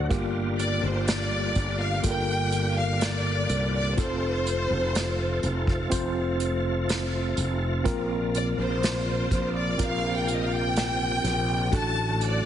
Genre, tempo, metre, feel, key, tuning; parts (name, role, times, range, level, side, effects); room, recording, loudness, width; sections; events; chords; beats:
pop ballad; 62 BPM; 4/4; straight; G minor; A4 = 440 Hz
tine electric piano; accompaniment; 0.0-12.5 s; G2 to F#5; -30 LUFS; equal; medium stereo tremolo
bright tonewheel organ; sustained chords; 0.0-12.5 s; C3 to G4; -34 LUFS; right 1 dB; overdrive, chorus vibrato, fast rotary speaker
fretless electric bass; bass; 0.0-12.4 s; F1 to C2; -29 LUFS; equal
unplugged drum kit; drums; 0.1-12.4 s; hi-hat, kick drum, snare drum; -29 LUFS; right 1 dB
warm studio violin section; melody; 0.6-12.5 s; C5 to A5; -29 LUFS; left 1 dB
light reverb, small room ambience; heavily compressed radio sound, multiband compression, nothing above 10.8 kHz; -24 LUFS; side -10 dB against mid
0.0-12.5 A section
0.1 Gm7; 4.0 F; 7.9 Bbsus2; 11.7 D/A
| 0.11 1.08 2.04 3.01 | 3.98 4.95 5.92 6.88 | 7.85 8.82 9.79 10.75 | 11.72